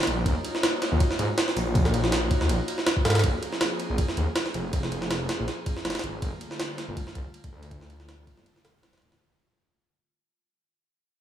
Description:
drum and bass, jungle; 161 BPM; 4/4; swing 54% on 16ths; A4 = 439 Hz
jungle sampler-style drum kit; drums; 0.0-9.2 s; kick drum, ride cymbal, snare drum; -26 LUFS; equal
airy breathy pad; sustained chords; 0.1-9.2 s; D3 to Db5; -33 LUFS; right 1 dB; chorus
detuned saw bass; bass; 0.1-9.2 s; D1 to Ab2; -27 LUFS; equal; tube saturation
little or no reverb; small room ambience; -24 LUFS; side -10 dB against mid
0.0-9.2 A section
drop 0.0-9.2; fade-out 3.2-9.2
0.3 Ebm9; 3.2 Bbm9; 6.2 Gm9

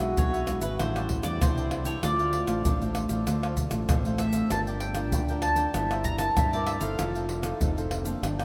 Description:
samba and choro; 97 BPM; 4/4; straight; D minor, G minor from 4.5 s; A4 = 440 Hz
breathy trombone; second line; 0.0-8.4 s; C4 to F#4; -37 LUFS; equal
cavaquinho; accompaniment; 0.0-8.4 s; D4 to G5; -41 LUFS; equal
nylon-string guitar; accompaniment; 0.0-8.4 s; G2 to Bb4; -35 LUFS; equal
fingered electric bass with an envelope filter; bass; 0.0-8.4 s; F1 to G2; -34 LUFS; equal
bowl-back mandolin; melody; 0.2-8.4 s; B4 to Bb5; -34 LUFS; equal
egg shaker, surdo, pandeiro and tamborim; percussion; 0.2-8.4 s; -32 LUFS; equal
wet cathedral reverb, RT60 5.9 s; in a vast, echoing space; -27 LUFS; mono
0.0-4.5 A section; 4.5-8.4 B section
0.0 E7/B; 0.8 A7sus4; 2.0 Dm7; 4.5 Gm7; 5.8 C7/G; 7.0 F7

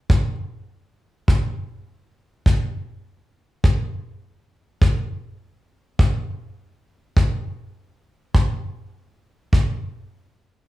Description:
blues; 51 BPM (dotted quarters); 12/8; straight
kick drum; drums; 0.1-9.7 s; -18 LUFS; equal
light reverb; studio reverb; -20 LUFS; side -17 dB against mid
0.0-9.5 A section; 9.5-10.7 B section

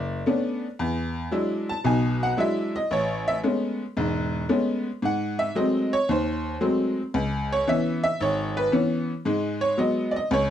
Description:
solo jazz; 114 BPM; 4/4; swing 69% on 8ths; A4 = 439 Hz
tack piano; solo; 0.0-10.5 s; E1 to A5; -22 LUFS; equal
moderate studio reverb, RT60 0.6 s; dark, warm production; -22 LUFS; side -10 dB against mid
0.0-10.5 A section
honky-tonk piano solo 0.0-10.5
0.0 Bm9; 0.8 E9; 2.9 Amaj9; 5.0 G#7b9; 7.1 C#m7; 9.2 G#m7

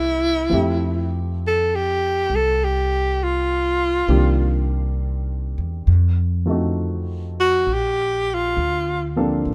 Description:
jazz ballad; 67 BPM; 4/4; swing 67% on 8ths; F major; A4 = 440 Hz
breathy tenor saxophone; melody; 0.0-9.2 s; E4 to A4; -22 LUFS; equal
warm baby grand piano; accompaniment; 0.0-9.5 s; Eb3 to E5; -27 LUFS; equal
upright bass; bass; 0.0-9.5 s; A1 to F2; -24 LUFS; equal
little or no reverb; -21 LUFS; mono
0.0-7.7 A section; 7.7-9.5 B section
tenor saxophone solo 0.0-7.7
0.0 C7alt; 0.5 Fmaj9; 4.1 Cm7; 5.9 F7b9; 7.7 Bbmaj9

